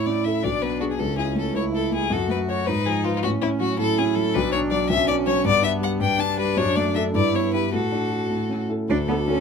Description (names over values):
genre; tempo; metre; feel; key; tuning
quick classical-period movement for piano trio; 107 BPM (dotted quarters); 6/8; rubato; D major from 4.3 s; A4 = 439 Hz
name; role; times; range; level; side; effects
bright violin; melody; 0.0-9.4 s; E4 to A5; -24 LUFS; left 8 dB; none
rich cello; second line; 0.0-9.4 s; B3 to F#4; -27 LUFS; right 7 dB; none
warm concert grand piano; accompaniment; 0.0-9.4 s; B1 to C#5; -23 LUFS; left 1 dB; none
room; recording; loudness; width
light reverb; minimal, uncompressed stereo recording; -20 LUFS; side -6 dB against mid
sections
0.0-8.9 A section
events
none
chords
0.4 G#dim/B; 1.0 A/C#; 2.1 F#m; 2.7 Fdim/Ab; 3.2 F#m/A; 4.3 Bm; 5.4 G; 6.6 D/F#; 7.1 Em/G; 7.7 D/A; 8.3 A; 8.9 D